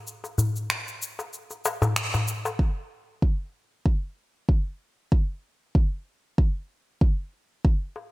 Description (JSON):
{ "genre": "downtempo", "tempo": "95 BPM", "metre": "4/4", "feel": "swing 55% on 16ths", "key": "none", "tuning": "none", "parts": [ { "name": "electronic shaker and finger snaps", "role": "drums", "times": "0.1-2.6 s", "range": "none", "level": "-29 LUFS", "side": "equal", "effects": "none" }, { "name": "darbuka", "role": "percussion", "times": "0.2-2.6, 8.0-8.1 s", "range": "none", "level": "-26 LUFS", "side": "left 2 dB", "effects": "none" }, { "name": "electronic kick drum", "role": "drums", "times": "2.6-7.8 s", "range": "none", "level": "-21 LUFS", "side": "equal", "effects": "none" } ], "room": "digital ambience", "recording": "none", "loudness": "-24 LUFS", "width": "side -21 dB against mid", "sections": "0.0-2.6 A section; 2.6-8.1 B section", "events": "break 0.1-2.6; band accent 2.0-2.3", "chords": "none" }